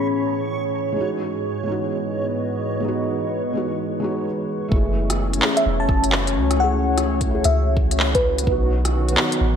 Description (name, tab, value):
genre	future garage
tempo	128 BPM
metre	4/4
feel	swing 63% on 16ths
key	F# dorian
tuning	A4 = 440 Hz
part	bell-like FM electric piano	melody	0.0-0.3, 5.6-8.5 s	B4 to B5	-24 LUFS	equal	chorus, phaser, vintage 12-bit sampler grit, analog delay
part	felt-muted upright piano	accompaniment	0.0-9.6 s	A2 to G#4	-27 LUFS	left 1 dB	sidechain pumping, tape echo
part	warbly tape-like pad	sustained chords	0.0-9.6 s	G#2 to D#5	-24 LUFS	equal	chorus, built-in reverb, vintage 12-bit sampler grit, sidechain pumping
part	backwards swelling texture	texture	0.0-4.2 s	C#5	-32 LUFS	right 3 dB	built-in reverb
part	soft 808-style bass	bass	4.7-9.6 s	E1 to C#2	-22 LUFS	equal	sidechain pumping
part	electronic kick drum	drums	4.7-8.6 s	none	-22 LUFS	equal	none
part	organic electronic drum kit	drums	5.1-9.4 s	handclaps, hi-hat, rim click	-23 LUFS	equal	none
room	light reverb, digital ambience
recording	none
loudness	-19 LUFS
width	side -8 dB against mid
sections	0.0-4.7 A section; 4.7-9.6 B section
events	none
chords	0.0 Amaj7; 1.0 Emaj7/G#; 4.7 F#m7; 8.5 B